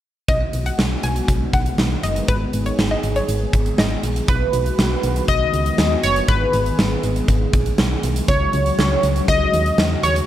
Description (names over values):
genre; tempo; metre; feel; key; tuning
synth-pop; 120 BPM; 4/4; straight; unclear; A4 = 443 Hz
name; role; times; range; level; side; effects
analog pluck; second line; 0.3-4.1 s; B4 to G#5; -26 LUFS; left 2 dB; chorus, slapback echo
chorused pulse-width pad; sustained chords; 0.3-10.3 s; C#3 to G#4; -26 LUFS; equal; none
solid FM bass; bass; 0.3-10.2 s; F#1 to E2; -22 LUFS; equal; none
huge arena drum kit; drums; 0.3-10.3 s; hi-hat, kick drum, snare drum; -21 LUFS; equal; gated reverb
funky polysynth comp; melody; 4.3-10.1 s; B4 to D#5; -20 LUFS; equal; chorus, slapback echo
room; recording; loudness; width
light reverb, small room ambience; none; -16 LUFS; side -12 dB against mid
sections
0.3-4.3 A section; 4.3-10.3 B section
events
none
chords
0.3 B6; 2.3 G#m; 4.3 B6; 6.3 G#m; 8.3 C#sus4